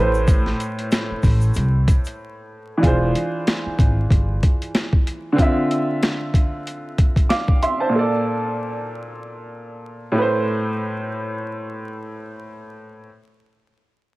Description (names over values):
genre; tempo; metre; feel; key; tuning
hip hop, boom-bap hip-hop; 94 BPM; 4/4; swing 57% on 16ths; A harmonic minor; A4 = 440 Hz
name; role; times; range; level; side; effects
clear upright piano; accompaniment; 0.0-13.1 s; A2 to D6; -22 LUFS; right 1 dB; cassette tape, high-pass filter, low-pass filter
upright bass; bass; 0.0-4.4 s; E1 to C2; -20 LUFS; equal; none
egg shaker; percussion; 0.1-2.2 s; none; -44 LUFS; left 4 dB; none
boom bap sampler-style drum kit; drums; 0.3-7.8 s; hi-hat, kick drum, snare drum; -18 LUFS; equal; none
room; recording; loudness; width
small room reverb; vinyl crackle; -18 LUFS; side -20 dB against mid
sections
0.0-2.8 A section; 2.8-13.0 B section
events
break 2.2-2.8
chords
0.0 Amadd9; 2.8 E7b9b13; 5.4 Dm9; 7.9 Bbmaj7; 10.2 Amadd9